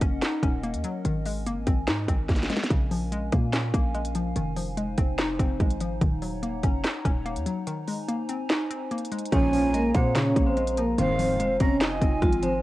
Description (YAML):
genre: hip hop, trap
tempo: 145 BPM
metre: 4/4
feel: half-time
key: Bb minor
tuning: A4 = 440 Hz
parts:
  - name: hollow square pluck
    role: accompaniment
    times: 0.0-12.6 s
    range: Db3 to Eb4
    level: -30 LUFS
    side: left 3 dB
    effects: chorus, cassette tape
  - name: warbly tape-like pad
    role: sustained chords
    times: 0.0-12.6 s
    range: Db3 to Bb5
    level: -36 LUFS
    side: equal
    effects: chorus, built-in reverb, cassette tape
  - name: hard-hitting 808-style bass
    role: bass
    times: 0.0-12.6 s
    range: Eb1 to Bb2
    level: -30 LUFS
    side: equal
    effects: none
  - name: trap drum kit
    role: drums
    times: 0.0-12.5 s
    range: handclaps, hi-hat, kick drum, snare drum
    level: -26 LUFS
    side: equal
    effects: cassette tape
  - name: vibraphone with medium hard mallets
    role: melody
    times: 9.3-12.6 s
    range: F3 to Eb5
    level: -24 LUFS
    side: equal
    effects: cassette tape
  - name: breathy jazz flute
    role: second line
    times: 9.3-12.6 s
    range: F5 to Bb5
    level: -33 LUFS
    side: right 4 dB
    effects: cassette tape, analog delay
  - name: analog synth brass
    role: stabs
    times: 9.3-11.4 s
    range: C2 to F3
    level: -31 LUFS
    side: equal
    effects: chorus, cassette tape
room: digital ambience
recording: home recording on cassette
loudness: -23 LUFS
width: side -16 dB against mid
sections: 0.0-9.3 A section; 9.3-12.6 B section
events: drum fill 2.3-2.7; break 7.7-9.3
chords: 0.0 Ebm7; 1.0 Abadd9; 2.7 Bbm7; 4.4 Fm7; 6.0 Ebm7; 7.7 Abadd9; 9.3 Bbm7; 11.0 Fm7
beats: 0.22 0.64 | 1.05 1.46 1.88 2.29 | 2.70 3.12 3.53 3.95 | 4.36 4.77 5.19 5.60 | 6.01 6.43 6.84 7.26 | 7.67 8.08 8.50 8.91 | 9.32 9.74 10.15 10.57 | 10.98 11.39 11.81 12.22